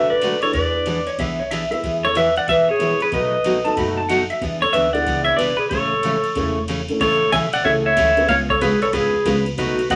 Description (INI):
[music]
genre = country, western swing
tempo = 186 BPM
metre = 4/4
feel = swing 64% on 8ths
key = A major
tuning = A4 = 440 Hz
[part]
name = pedal steel guitar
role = melody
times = 0.0-10.0 s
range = B4 to G#5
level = -22 LUFS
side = equal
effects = none
[part]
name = growling clarinet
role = second line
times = 0.0-10.0 s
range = F#4 to E5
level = -24 LUFS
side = equal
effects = none
[part]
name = dark upright piano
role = accompaniment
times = 0.0-9.4 s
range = A3 to B4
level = -29 LUFS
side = equal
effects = none
[part]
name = picked steel-string acoustic guitar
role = accompaniment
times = 0.0-10.0 s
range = B2 to B4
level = -27 LUFS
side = equal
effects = none
[part]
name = upright bass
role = bass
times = 0.0-10.0 s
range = E1 to B2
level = -33 LUFS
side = equal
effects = none
[part]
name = soft vintage rhythm box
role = drums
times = 0.2-10.0 s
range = hi-hat, kick drum, ride cymbal, snare drum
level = -33 LUFS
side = equal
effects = none
[part]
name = clean lap steel guitar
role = second line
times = 1.1-4.4 s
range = C#5 to B5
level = -27 LUFS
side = equal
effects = none
[sound]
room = wet club reverb, RT60 0.8 s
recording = vinyl crackle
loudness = -19 LUFS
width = mono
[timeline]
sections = 0.0-7.0 A section; 7.0-10.0 B section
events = none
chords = 0.0 Bm7; 0.5 E7; 1.8 E; 3.1 B7; 4.4 E7; 5.7 Amaj7; 8.3 C#7